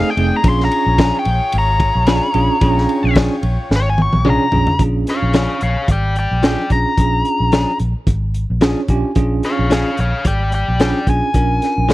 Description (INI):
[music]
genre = straight-eighth soul blues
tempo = 110 BPM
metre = 4/4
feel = swing 55% on 16ths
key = unclear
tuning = A4 = 440 Hz
[part]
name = biting lead guitar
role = melody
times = 0.0-11.9 s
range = C#5 to C#6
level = -19 LUFS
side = left 2 dB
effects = overdrive
[part]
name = bell-like tine electric piano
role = accompaniment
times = 0.0-11.9 s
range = A3 to Ab5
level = -20 LUFS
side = right 4 dB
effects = fast stereo tremolo
[part]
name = clear horn section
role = sustained chords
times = 0.0-4.8 s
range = A3 to G5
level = -29 LUFS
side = left 1 dB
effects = none
[part]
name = direct-recorded clean electric guitar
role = stabs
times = 0.0-11.9 s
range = F3 to Ab4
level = -19 LUFS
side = left 4 dB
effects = none
[part]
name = vintage muted fingered electric bass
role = bass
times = 0.2-11.9 s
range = F1 to Bb1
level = -18 LUFS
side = equal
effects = none
[part]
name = crunchy breakbeat drum kit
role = drums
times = 0.2-11.9 s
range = hi-hat, kick drum, ride cymbal, snare drum, toms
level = -17 LUFS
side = equal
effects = none
[sound]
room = small room ambience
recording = dry, close 1970s-style studio recording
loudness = -13 LUFS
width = side -17 dB against mid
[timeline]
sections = 0.0-4.8 A section; 4.8-11.9 B section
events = lead electric guitar solo 0.0-4.8; drum fill 3.7-4.8; tine electric piano fill 8.3-9.2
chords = 0.4 Bb7#9